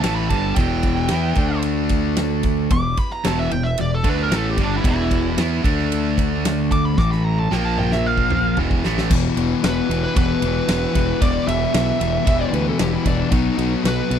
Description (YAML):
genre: classic rock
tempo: 113 BPM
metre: 4/4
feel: straight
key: E minor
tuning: A4 = 440 Hz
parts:
  - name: smooth overdriven lead guitar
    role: melody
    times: 0.0-14.2 s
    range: D4 to D6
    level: -24 LUFS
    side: right 3 dB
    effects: slapback echo
  - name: bright tonewheel organ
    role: sustained chords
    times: 0.0-14.2 s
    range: A3 to E#5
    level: -34 LUFS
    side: equal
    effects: none
  - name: cranked stack guitar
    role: riff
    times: 0.0-14.2 s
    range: E2 to E4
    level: -24 LUFS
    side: left 11 dB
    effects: overdrive
  - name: crunchy overdriven guitar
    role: riff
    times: 0.0-9.1 s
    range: E2 to E4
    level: -25 LUFS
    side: right 15 dB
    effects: none
  - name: growling fingered electric bass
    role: bass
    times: 0.0-14.2 s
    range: E1 to E2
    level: -23 LUFS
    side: equal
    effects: overdrive
  - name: huge arena drum kit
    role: drums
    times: 0.0-14.2 s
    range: crash cymbal, kick drum, ride cymbal, snare drum, toms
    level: -23 LUFS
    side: equal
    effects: none
  - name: fuzz guitar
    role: riff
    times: 9.1-14.2 s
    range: E2 to B3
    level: -23 LUFS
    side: left 1 dB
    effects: distortion
  - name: overdriven slide guitar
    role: second line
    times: 12.3-13.7 s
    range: D4 to E5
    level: -26 LUFS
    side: left 2 dB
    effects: none
room: little or no reverb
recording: dry, close 1970s-style studio recording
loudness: -17 LUFS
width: side -8 dB against mid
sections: 0.0-9.1 A section; 9.1-14.2 B section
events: lead electric guitar solo 0.0-9.1; drum fill 7.0-9.1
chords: 0.0 Em; 1.4 D5; 2.7 Em; 5.6 D5; 7.0 A5; 7.5 A#5; 8.6 Em; 13.3 B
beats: 0.04 | 0.57 1.11 1.64 2.17 | 2.71 3.24 3.78 4.31 | 4.85 5.38 5.92 6.45 | 6.98 7.51 8.05 8.58 | 9.11 9.64 10.16 10.69 | 11.22 11.75 12.27 12.80 | 13.32 13.85